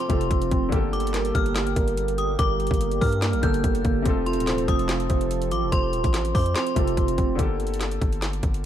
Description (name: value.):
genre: hip hop, trap.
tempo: 144 BPM.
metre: 4/4.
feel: half-time.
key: G minor.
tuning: A4 = 440 Hz.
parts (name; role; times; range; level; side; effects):
metallic FM bell; second line; 0.0-7.3 s; C6 to G6; -31 LUFS; left 4 dB; chorus, tape echo.
clear concert grand piano; accompaniment; 0.0-8.7 s; C3 to A4; -31 LUFS; left 5 dB; low-pass filter.
dark analog pad; sustained chords; 0.0-7.4 s; F3 to A4; -33 LUFS; equal; chorus.
mellow tine electric piano; arpeggios; 0.0-7.4 s; Bb3 to C5; -27 LUFS; right 6 dB; medium stereo tremolo, low-pass filter, tape echo.
trap drum kit; drums; 0.0-8.6 s; handclaps, hi-hat, kick drum, snare drum; -25 LUFS; equal; none.
distorted 808-style bass; bass; 0.1-8.7 s; Eb1 to G2; -27 LUFS; equal; distortion.
room: little or no reverb.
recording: dark, warm production.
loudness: -21 LUFS.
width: side -10 dB against mid.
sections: 0.0-7.4 A section; 7.4-8.7 B section.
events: none.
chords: 0.0 F; 0.7 Gmadd9; 4.1 F; 7.4 Gmadd9.